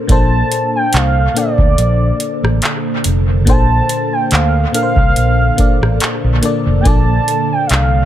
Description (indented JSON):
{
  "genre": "contemporary R&B",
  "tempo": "71 BPM",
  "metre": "4/4",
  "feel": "swing 54% on 16ths",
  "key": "unclear",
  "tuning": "A4 = 439 Hz",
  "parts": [
    { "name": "FM electric piano", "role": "accompaniment", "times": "0.0-8.1 s", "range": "Bb2 to D5", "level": "-19 LUFS", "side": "left 5 dB", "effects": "chorus" },
    { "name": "ethereal airy pad", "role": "sustained chords", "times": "0.0-8.1 s", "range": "D3 to A4", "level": "-23 LUFS", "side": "right 3 dB", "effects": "ensemble chorus, built-in reverb, phaser" },
    { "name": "gliding portamento lead", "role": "melody", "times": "0.1-8.1 s", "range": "D5 to A5", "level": "-18 LUFS", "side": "right 3 dB", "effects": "chorus, analog delay" },
    { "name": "fingered electric bass", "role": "bass", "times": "0.1-8.0 s", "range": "F1 to D2", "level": "-14 LUFS", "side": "equal", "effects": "none" },
    { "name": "booming analog drum machine", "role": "drums", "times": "0.1-7.9 s", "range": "handclaps, hi-hat, kick drum, rim click", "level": "-15 LUFS", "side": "equal", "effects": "analog delay" }
  ],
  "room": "light reverb",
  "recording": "echo-heavy mix",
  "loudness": "-11 LUFS",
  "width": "side -12 dB against mid",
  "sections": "0.1-8.1 A section",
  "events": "none",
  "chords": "0.1 Bbmaj9"
}